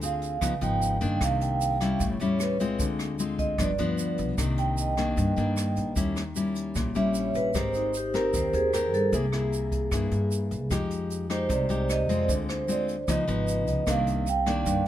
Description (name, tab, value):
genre	bossa nova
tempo	152 BPM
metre	4/4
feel	straight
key	C minor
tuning	A4 = 440 Hz
part	nylon-string guitar	accompaniment	0.0-14.9 s	G2 to Bb4	-29 LUFS	left 3 dB	none
part	vibraphone with medium mallets	accompaniment	0.0-14.9 s	Eb4 to G5	-28 LUFS	right 2 dB	none
part	upright bass	bass	0.0-14.8 s	G1 to G2	-31 LUFS	equal	none
part	jazz brush drum kit	drums	0.0-14.9 s	hi-hat, kick drum, rim click	-34 LUFS	right 1 dB	none
part	tube shaker	percussion	0.0-14.9 s	none	-40 LUFS	right 5 dB	none
room	little or no reverb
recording	close, detailed microphones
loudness	-24 LUFS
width	side -12 dB against mid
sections	0.0-4.4 A section; 4.4-14.9 A section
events	vibraphone solo 0.0-14.9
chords	0.4 Db9; 1.2 Cm9; 2.0 A7; 2.8 Dm7b5; 3.6 G7; 4.4 Cm9; 6.0 Eb7b9; 7.5 Abmaj9; 9.1 C7b13; 10.7 Fm9; 12.3 Dm7b5; 13.1 Db9; 13.9 Cm9